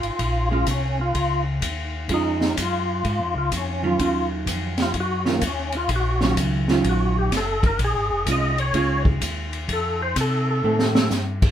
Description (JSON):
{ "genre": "soul jazz organ trio", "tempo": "126 BPM", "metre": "4/4", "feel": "swing 66% on 8ths", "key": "unclear", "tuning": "A4 = 438 Hz", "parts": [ { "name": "percussive tonewheel organ", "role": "melody", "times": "0.0-11.1 s", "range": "Bb3 to Eb5", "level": "-25 LUFS", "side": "left 1 dB", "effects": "slow rotary speaker, overdrive, chorus vibrato" }, { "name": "mellow tonewheel organ", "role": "bass", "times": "0.0-11.5 s", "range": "F1 to C3", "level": "-25 LUFS", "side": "equal", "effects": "slow rotary speaker" }, { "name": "open jazz drum kit", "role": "drums", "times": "0.0-11.5 s", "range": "crash cymbal, hi-hat, kick drum, ride cymbal, snare drum", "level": "-25 LUFS", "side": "equal", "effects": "none" }, { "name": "archtop guitar, miked and amplified", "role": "accompaniment", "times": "0.5-10.9 s", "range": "Eb3 to F4", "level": "-24 LUFS", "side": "right 4 dB", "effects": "none" } ], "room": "moderate studio reverb, RT60 0.5 s", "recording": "band playing live in one room", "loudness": "-20 LUFS", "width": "side -10 dB against mid", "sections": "0.0-11.5 A section", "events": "tonewheel organ solo 0.0-11.5; drum fill 10.6-11.1", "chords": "0.0 Bbm7; 4.0 Ebm9; 7.8 Bbm7; 9.7 F7" }